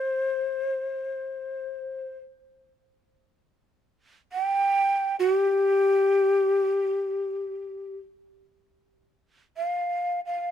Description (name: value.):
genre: japanese traditional, Japanese chamber music.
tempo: free time.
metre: none.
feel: none.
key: unclear.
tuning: A4 = 440 Hz.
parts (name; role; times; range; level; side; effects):
breathy mellow shakuhachi; solo; 0.0-10.5 s; G4 to G5; -23 LUFS; left 1 dB; none.
room: light reverb.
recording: close, detailed microphones.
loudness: -23 LUFS.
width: side -10 dB against mid.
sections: 0.0-8.2 A section; 8.2-10.5 A section.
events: none.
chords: none.